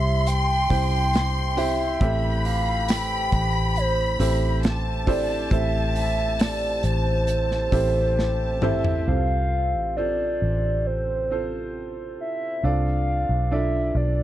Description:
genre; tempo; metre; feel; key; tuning
pop ballad; 68 BPM; 4/4; straight; unclear; A4 = 440 Hz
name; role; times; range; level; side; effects
hollow clarinet-like synth lead; melody; 0.0-14.2 s; C5 to G5; -26 LUFS; equal; chorus
warm studio violin section; second line; 0.0-9.0 s; A5 to C6; -30 LUFS; left 2 dB; none
clear upright piano; accompaniment; 0.0-14.2 s; A2 to G5; -28 LUFS; right 2 dB; none
vintage muted fingered electric bass; bass; 0.0-14.2 s; A1 to C2; -24 LUFS; equal; none
modern studio drum kit; drums; 0.3-9.1 s; hi-hat, kick drum, snare drum, toms; -25 LUFS; equal; none
room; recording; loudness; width
little or no reverb; dry, close 1970s-style studio recording; -21 LUFS; side -13 dB against mid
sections
0.0-9.1 A section; 9.1-14.2 B section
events
drum fill 8.2-9.1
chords
0.0 C; 2.0 Am7; 9.1 F; 12.6 Dm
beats
0.27 1.14 | 2.01 2.89 3.76 4.63 | 5.51 6.39 7.28 8.18 | 9.08 9.97 10.86 11.75 | 12.63 13.51

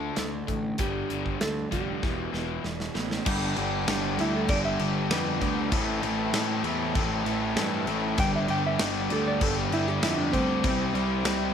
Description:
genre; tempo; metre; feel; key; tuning
classic rock; 98 BPM; 4/4; straight; unclear; A4 = 437 Hz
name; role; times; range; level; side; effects
hollow-body jazz guitar; melody; 0.0-11.5 s; C4 to G5; -32 LUFS; right 1 dB; none
overdriven electric guitar; riff; 0.0-11.5 s; E2 to A4; -31 LUFS; left 10 dB; none
overdriven semi-hollow guitar; riff; 0.0-11.5 s; E2 to D4; -32 LUFS; right 9 dB; none
fuzz picked electric bass; bass; 0.0-11.5 s; E1 to G2; -32 LUFS; equal; overdrive
big rock drum kit; drums; 0.2-11.4 s; crash cymbal, hi-hat, kick drum, snare drum; -31 LUFS; equal; none
thick fuzz guitar; riff; 3.3-11.5 s; G2 to C4; -34 LUFS; equal; distortion
room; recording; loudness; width
light reverb; none; -24 LUFS; side -8 dB against mid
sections
0.0-3.3 A section; 3.3-11.5 B section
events
drum fill 2.0-3.3; hollow-body jazz guitar solo 3.3-11.5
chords
0.0 Dm; 0.8 G5; 2.0 Em; 3.3 G; 5.7 Am; 8.2 G; 10.6 C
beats
0.17 | 0.79 1.41 2.03 2.65 | 3.26 3.88 4.49 5.11 | 5.72 6.34 6.95 7.57 | 8.18 8.79 9.41 10.02 | 10.63 11.25

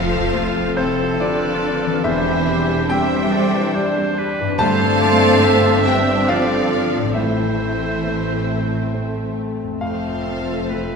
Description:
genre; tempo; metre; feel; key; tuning
cinematic; 70 BPM; 3/4; rubato; C major; A4 = 440 Hz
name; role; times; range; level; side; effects
warm symphonic violin section; melody; 0.0-11.0 s; A4 to F5; -28 LUFS; left 2 dB; none
dark clarinet; second line; 0.0-11.0 s; C4 to A4; -26 LUFS; left 1 dB; none
large flute ensemble; second line; 0.0-11.0 s; E4 to C5; -27 LUFS; right 2 dB; none
rich symphonic violin section; second line; 0.0-11.0 s; C5 to A5; -28 LUFS; left 2 dB; none
rich studio viola section; accompaniment; 0.0-11.0 s; C3 to D4; -27 LUFS; right 2 dB; none
warm baby grand piano; accompaniment; 0.0-11.0 s; E2 to A5; -25 LUFS; left 1 dB; none
mellow French horn section; sustained chords; 0.0-11.0 s; A3 to A4; -24 LUFS; left 2 dB; none
concert harp; arpeggios; 0.0-11.0 s; F2 to A5; -28 LUFS; left 6 dB; none
rich symphonic double bass section; bass; 0.0-11.0 s; E1 to A1; -26 LUFS; right 2 dB; none
warm symphonic cello section; bass; 0.0-11.0 s; C3 to A3; -25 LUFS; right 2 dB; none
bright oboe; second line; 0.3-11.0 s; F4 to E5; -26 LUFS; right 2 dB; none
timpani; percussion; 4.6-5.8 s; G2; -30 LUFS; right 1 dB; none
room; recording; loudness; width
wet concert hall reverb, RT60 1.8 s; none; -16 LUFS; side -5 dB against mid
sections
0.0-11.0 A section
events
none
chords
0.0 F; 2.0 Cadd9/E; 4.6 Gsus4; 7.2 Am; 9.8 F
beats
0.34 1.19 | 2.04 2.90 3.74 | 4.58 5.43 6.28 | 7.15 8.04 8.93 | 9.81 10.69

